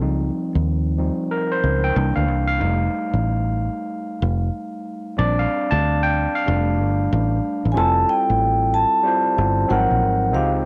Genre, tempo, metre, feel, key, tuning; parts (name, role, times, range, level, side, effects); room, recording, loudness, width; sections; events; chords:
R&B, neo-soul; 93 BPM; 4/4; swing 64% on 16ths; F major; A4 = 441 Hz
overdriven tine electric piano; accompaniment; 0.0-10.7 s; E3 to A5; -25 LUFS; equal
fingered electric bass; bass; 0.0-10.6 s; F1 to Eb2; -23 LUFS; equal; tube saturation
vibraphone with soft mallets; melody; 7.7-10.5 s; F5 to A5; -21 LUFS; equal; slapback echo
light reverb, small room reverb; -20 LUFS; mono
0.0-7.8 A section; 7.8-10.7 B section
tine electric piano solo 0.0-7.8
0.0 Dbmaj9#11; 1.9 C9; 2.6 F7; 5.2 Bb6; 6.5 F6; 7.8 Fmaj9; 9.7 Ab13